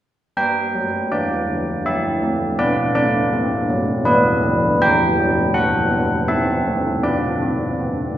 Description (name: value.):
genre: classical, tune for church bells.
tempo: 81 BPM.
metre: 3/4.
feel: straight.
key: G major.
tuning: A4 = 440 Hz.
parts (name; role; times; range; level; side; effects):
old church bells; solo; 0.4-8.2 s; D3 to G5; -16 LUFS; equal; none.
room: wet recital hall reverb, RT60 1.5 s.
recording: heard from further back in the room.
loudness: -16 LUFS.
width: side -12 dB against mid.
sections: 0.4-8.2 A section.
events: none.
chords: 0.4 G; 4.8 Em; 6.3 Am/C; 7.0 Bm.